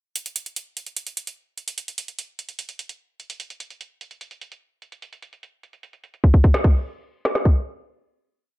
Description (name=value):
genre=hip hop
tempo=148 BPM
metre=4/4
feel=half-time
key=none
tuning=none
part: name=trap drum kit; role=drums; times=0.2-7.5 s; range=crash cymbal, hi-hat, kick drum, snare drum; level=-20 LUFS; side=equal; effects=none
room=digital ambience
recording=low-pass filter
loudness=-20 LUFS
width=side -18 dB against mid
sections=0.2-6.6 breakdown; 6.6-8.6 final hit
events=filter sweep 0.2-6.6; drum fill 6.2-6.6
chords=none